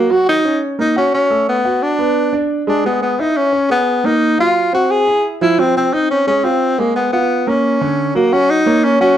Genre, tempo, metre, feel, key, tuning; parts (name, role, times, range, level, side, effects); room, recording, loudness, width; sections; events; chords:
jazz; 175 BPM; 4/4; straight; A4 = 441 Hz
breathy tenor saxophone; melody; 0.0-9.2 s; Bb3 to Ab4; -14 LUFS; left 1 dB; slapback echo, plate reverb
clear concert grand piano; accompaniment; 0.0-9.1 s; D3 to Ab5; -18 LUFS; right 3 dB
moderate club reverb, RT60 0.6 s; dark, warm production; -12 LUFS; side -10 dB against mid
0.0-8.3 A section
0.1 Ebm7; 1.5 Cbm7; 2.2 Abdim; 2.8 Dbm13/Ab; 4.2 Gbmaj7#11; 4.9 Abaug; 5.6 Fm; 7.0 Fdim; 7.6 Bbaug; 8.3 Ebm7